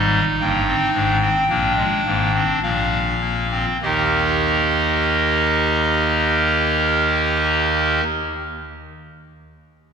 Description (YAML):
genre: classical, baroque-style 4-part fugue for pipe organ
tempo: 48-57 BPM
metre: 4/4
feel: straight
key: Eb major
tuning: A4 = 439 Hz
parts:
  - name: pipe organ, clarinet reed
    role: solo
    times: 0.0-8.0 s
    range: G1 to G5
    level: -16 LUFS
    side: equal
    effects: none
room: wet church reverb, RT60 2.8 s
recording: minimal, uncompressed stereo recording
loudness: -16 LUFS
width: side -6 dB against mid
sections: 0.0-3.8 A section; 3.8-8.7 B section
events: slowing down 0.0-3.8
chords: 0.0 Eb; 1.5 Bb7; 3.8 Eb